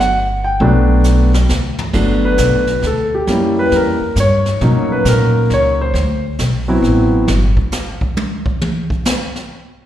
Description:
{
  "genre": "jazz piano trio",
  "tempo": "135 BPM",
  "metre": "3/4",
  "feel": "swing 65% on 8ths",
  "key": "unclear",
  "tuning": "A4 = 440 Hz",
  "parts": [
    { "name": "warm concert grand piano", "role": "melody", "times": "0.0-7.3 s", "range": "F#3 to G5", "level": "-14 LUFS", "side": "equal", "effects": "slapback echo" },
    { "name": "upright bass", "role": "bass", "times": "0.0-7.6 s", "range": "G1 to B2", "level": "-15 LUFS", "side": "equal", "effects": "none" },
    { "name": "jazz brush drum kit", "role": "drums", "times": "0.0-9.4 s", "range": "brushed snare drum, crash cymbal, hi-hat, kick drum, snare drum, toms", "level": "-21 LUFS", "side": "equal", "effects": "slapback echo" }
  ],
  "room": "light reverb",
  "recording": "live gig heard through the venue's PA, recital hall reverb",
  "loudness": "-12 LUFS",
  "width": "side -12 dB against mid",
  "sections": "0.0-1.9 A section; 1.9-9.9 B section",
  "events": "drum fill 1.0-1.9; grand piano solo 1.9-9.9; drum solo 7.3-9.9",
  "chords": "0.0 Gmaj9; 3.3 F#7b9; 4.6 Bmaj9; 5.9 D13; 7.3 N.C."
}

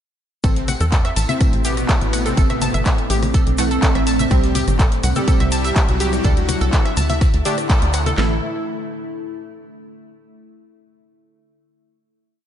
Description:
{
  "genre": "melodic techno",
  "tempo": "124 BPM",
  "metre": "4/4",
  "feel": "straight",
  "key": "A dorian",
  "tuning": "A4 = 440 Hz",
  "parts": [
    { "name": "soft supersaw", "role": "melody", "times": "0.4-8.4 s", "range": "B2 to G4", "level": "-27 LUFS", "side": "equal", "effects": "sidechain pumping, analog delay" },
    { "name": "evolving wavetable pad", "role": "sustained chords", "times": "1.2-8.4 s", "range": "D3 to E4", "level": "-26 LUFS", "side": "equal", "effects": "chorus, built-in reverb, sidechain pumping" },
    { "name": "analog pluck", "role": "arpeggios", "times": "0.4-8.4 s", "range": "G4 to A5", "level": "-26 LUFS", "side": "equal", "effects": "chorus, cassette tape, sidechain pumping, analog delay" },
    { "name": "filtered dub chord stab", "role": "stabs", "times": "0.4-8.4 s", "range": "A2 to D4", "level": "-28 LUFS", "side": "right 4 dB", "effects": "wide subtle chorus, sidechain pumping, analog delay" },
    { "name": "tight sequencer bass", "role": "bass", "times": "0.4-8.4 s", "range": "G1 to E2", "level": "-21 LUFS", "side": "equal", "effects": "sidechain pumping" },
    { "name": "swarming drone", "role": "drone", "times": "2.2-8.2 s", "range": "A2 to A3", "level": "-33 LUFS", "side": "right 2 dB", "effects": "none" },
    { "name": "deep house drum kit", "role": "drums", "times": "0.4-8.2 s", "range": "congas, handclaps, hi-hat, rim click", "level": "-25 LUFS", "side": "left 2 dB", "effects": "none" },
    { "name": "house drum kit", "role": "drums", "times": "0.4-8.3 s", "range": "handclaps, kick drum, snare drum", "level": "-17 LUFS", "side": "equal", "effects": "none" },
    { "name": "jazz brush drum kit", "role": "drums", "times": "0.4-8.2 s", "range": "hi-hat, snare drum, tambourine", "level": "-37 LUFS", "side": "right 2 dB", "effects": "none" },
    { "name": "tube shaker", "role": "percussion", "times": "0.4-8.2 s", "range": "none", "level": "-34 LUFS", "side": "left 2 dB", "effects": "none" }
  ],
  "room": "light reverb, digital ambience",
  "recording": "nothing above 10.8 kHz",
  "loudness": "-15 LUFS",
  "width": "side -10 dB against mid",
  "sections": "0.4-8.2 drop; 8.2-10.1 final chord",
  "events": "drop 0.4-8.2; band accent 7.7",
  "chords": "0.4 Am; 4.3 C; 6.2 Dsus2; 8.2 Am"
}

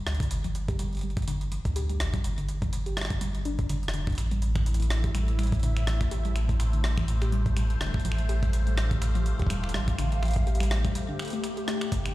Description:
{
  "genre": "IDM",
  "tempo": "124 BPM",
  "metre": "4/4",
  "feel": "swing 56% on 16ths",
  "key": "unclear",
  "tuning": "A4 = 440 Hz",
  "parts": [
    { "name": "warbly dusty pluck", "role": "arpeggios", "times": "0.0-11.8 s", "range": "G2 to G4", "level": "-35 LUFS", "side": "left 2 dB", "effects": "chorus, tape echo" },
    { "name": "warm sub bass", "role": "bass", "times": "0.0-12.1 s", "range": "E1 to D2", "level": "-27 LUFS", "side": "equal", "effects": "none" },
    { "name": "jungle sampler-style drum kit", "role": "drums", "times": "0.1-12.1 s", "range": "finger snaps, hi-hat, rim click", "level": "-36 LUFS", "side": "equal", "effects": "digital delay" },
    { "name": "electronic kick drum", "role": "drums", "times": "0.2-12.0 s", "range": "none", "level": "-29 LUFS", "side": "equal", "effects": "none" },
    { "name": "phased analog pad", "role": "sustained chords", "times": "4.2-12.1 s", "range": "A2 to F5", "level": "-35 LUFS", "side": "equal", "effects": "phaser, chorus" }
  ],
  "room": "digital ambience",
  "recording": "played on a big sound system in a bare room, large studio reverb",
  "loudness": "-25 LUFS",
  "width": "side -16 dB against mid",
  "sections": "0.0-11.9 A section",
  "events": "filter sweep on synth pluck 0.0-11.9; break 11.0-11.9",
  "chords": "0.0 G5; 4.2 Am; 8.1 Fadd9"
}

